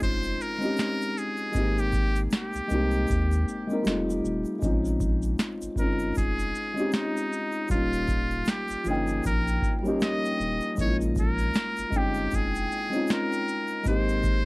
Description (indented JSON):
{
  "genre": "lo-fi hip hop",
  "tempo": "78 BPM",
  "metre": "4/4",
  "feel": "swing 58% on 16ths",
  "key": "Bb dorian",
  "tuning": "A4 = 440 Hz",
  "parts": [
    { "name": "trumpet with metal mute", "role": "melody", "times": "0.0-14.4 s", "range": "Eb4 to Eb5", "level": "-31 LUFS", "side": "equal", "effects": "low-pass filter" },
    { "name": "felt-muted upright piano", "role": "accompaniment", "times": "0.0-14.4 s", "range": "F3 to G5", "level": "-28 LUFS", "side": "left 1 dB", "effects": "cassette tape, low-pass filter" },
    { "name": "saturated sub bass", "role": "bass", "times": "0.0-14.4 s", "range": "Eb1 to Eb2", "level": "-29 LUFS", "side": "equal", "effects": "none" },
    { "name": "booming analog drum machine", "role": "drums", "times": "0.0-14.4 s", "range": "hi-hat, kick drum, shaker, snare drum", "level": "-28 LUFS", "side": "equal", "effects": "none" },
    { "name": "egg shaker", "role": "percussion", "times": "0.2-14.4 s", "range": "none", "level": "-52 LUFS", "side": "right 3 dB", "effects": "none" }
  ],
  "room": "light reverb",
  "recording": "vinyl crackle",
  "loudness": "-24 LUFS",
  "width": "side -24 dB against mid",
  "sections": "0.0-14.4 A section",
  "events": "none",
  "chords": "0.0 Bbm11; 1.5 Abmaj9; 3.9 F7; 4.6 Bbm11; 7.7 Eb9; 10.8 Bbm11; 13.9 Abmaj9"
}